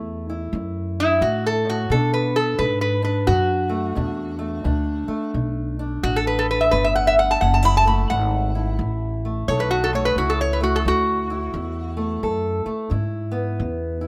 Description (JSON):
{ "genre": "acoustic country blues, solo or duo", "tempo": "87 BPM", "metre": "4/4", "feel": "swing 62% on 8ths", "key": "F# minor", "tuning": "A4 = 440 Hz", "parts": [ { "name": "fingerpicked steel-string acoustic guitar", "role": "accompaniment", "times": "0.0-14.1 s", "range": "F#2 to A4", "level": "-30 LUFS", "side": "equal", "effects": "none" }, { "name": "upright bass", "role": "bass", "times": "0.0-14.1 s", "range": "F#1 to B2", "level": "-26 LUFS", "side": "equal", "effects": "none" }, { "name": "metal-body resonator slide guitar", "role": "melody", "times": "1.0-12.2 s", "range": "E4 to B5", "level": "-22 LUFS", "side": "equal", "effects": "none" } ], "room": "light reverb, small room ambience", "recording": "rough home demo mix", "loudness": "-22 LUFS", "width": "mono", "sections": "0.0-14.1 A section", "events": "resonator guitar played with a steel bar solo 0.0-14.1", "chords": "0.0 F#m7; 1.9 Bm7; 7.4 F#m7; 12.9 C#m7" }